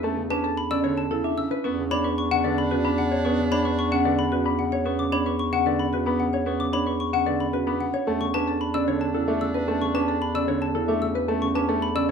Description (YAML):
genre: classical, minimalist pattern music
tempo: 112 BPM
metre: 3/4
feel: straight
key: unclear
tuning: A4 = 440 Hz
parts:
  - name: mellow electric guitar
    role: melody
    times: 0.0-12.1 s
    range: A4 to C#6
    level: -30 LUFS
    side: left 9 dB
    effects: none
  - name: warm baby grand piano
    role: accompaniment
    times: 0.0-12.1 s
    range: C#3 to D4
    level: -30 LUFS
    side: right 1 dB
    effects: none
  - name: marimba with hard mallets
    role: arpeggios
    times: 0.0-12.1 s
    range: C#4 to C#5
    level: -28 LUFS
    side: right 9 dB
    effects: none
  - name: warm bass clarinet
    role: bass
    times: 0.0-12.1 s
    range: E2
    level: -28 LUFS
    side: left 2 dB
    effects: none
  - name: xylophone with rubber mallets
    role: arpeggios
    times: 0.3-12.1 s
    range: F#5 to E6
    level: -29 LUFS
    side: left 4 dB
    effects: none
  - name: clear soprano saxophone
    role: second line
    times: 1.6-4.7, 8.1-11.1 s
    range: D4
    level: -32 LUFS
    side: right 4 dB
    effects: none
room: moderate recital hall reverb, RT60 1.4 s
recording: close, detailed microphones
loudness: -22 LUFS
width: side -6 dB against mid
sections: 0.0-12.1 A section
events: none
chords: 0.0 E7sus4; 1.6 Bm/E; 8.1 E7sus4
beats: | 0.04 0.57 1.11 | 1.65 2.18 2.72 | 3.25 3.79 4.32 | 4.86 5.39 5.93 | 6.47 7.00 7.54 | 8.07 8.61 9.14 | 9.68 10.22 10.75 | 11.29 11.82